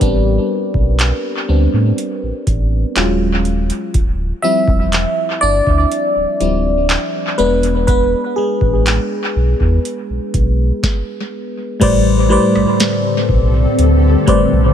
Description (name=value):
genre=contemporary R&B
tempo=61 BPM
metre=4/4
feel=straight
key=A minor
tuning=A4 = 436 Hz
part: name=FM electric piano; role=accompaniment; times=0.0-14.7 s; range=A2 to E5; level=-16 LUFS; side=left 1 dB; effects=chorus, phaser, analog delay
part: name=sub bass with octave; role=bass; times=0.0-14.7 s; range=D1 to A2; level=-15 LUFS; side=equal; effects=none
part: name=booming analog drum machine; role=drums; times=0.0-14.5 s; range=crash cymbal, handclaps, hi-hat, kick drum, rim click, snare drum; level=-18 LUFS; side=equal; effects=overdrive, vintage 12-bit sampler grit, analog delay
part: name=granular cloud pad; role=sustained chords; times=12.9-14.7 s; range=D3 to A4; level=-18 LUFS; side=left 3 dB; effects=built-in reverb, sidechain pumping
room=little or no reverb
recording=echo-heavy mix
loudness=-13 LUFS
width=side -9 dB against mid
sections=0.0-11.8 A section; 11.8-14.7 B section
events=FM electric piano solo 0.0-11.8; stop 10.8-11.8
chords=0.0 Am11; 3.0 D#m11; 3.9 Dm11; 7.4 E7; 11.8 Am11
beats=| 0.01 0.99 1.98 2.96 | 3.94 4.93 5.91 6.90 | 7.88 8.86 9.85 10.83 | 11.81 12.80 13.78